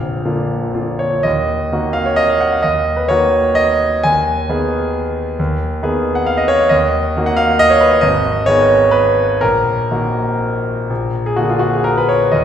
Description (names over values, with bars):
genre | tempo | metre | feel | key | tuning
classical, piano waltz | 118-145 BPM | 3/4 | rubato | Eb minor | A4 = 440 Hz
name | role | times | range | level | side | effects
clear concert grand piano | solo | 0.0-12.4 s | Bb0 to Ab5 | -13 LUFS | equal | none
room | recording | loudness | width
wet recital hall reverb, RT60 1.7 s | recorded in a church or concert hall | -13 LUFS | side -9 dB against mid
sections
0.0-1.2 A section; 1.2-12.4 B section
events
none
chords
0.0 Bb; 1.2 Ebm; 4.0 Abm/Eb; 6.7 Ebm; 8.0 Abm; 9.4 Ebm/Bb; 10.9 Bb